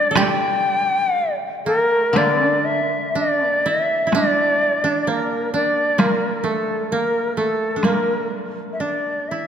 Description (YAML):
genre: japanese traditional, Japanese chamber music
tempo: 60-66 BPM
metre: 2/4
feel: rubato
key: unclear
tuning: A4 = 440 Hz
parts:
  - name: bright reedy shakuhachi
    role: melody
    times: 0.0-9.5 s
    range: A4 to G5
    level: -19 LUFS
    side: left 1 dB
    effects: none
  - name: koto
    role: second line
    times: 0.0-9.5 s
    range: G3 to A4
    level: -24 LUFS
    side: right 4 dB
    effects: none
  - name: taiko ensemble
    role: percussion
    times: 0.2-8.1 s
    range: none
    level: -24 LUFS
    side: equal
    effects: none
  - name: koto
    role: accompaniment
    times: 2.1-5.1 s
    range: D3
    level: -27 LUFS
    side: left 5 dB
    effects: none
room: wet church reverb, RT60 3.4 s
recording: none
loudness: -17 LUFS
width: side -8 dB against mid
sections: 0.0-2.1 A section; 2.1-9.5 B section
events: none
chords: none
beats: | 0.17 1.15 | 2.15 3.15 | 4.13 5.08 | 6.00 6.91 | 7.84 8.80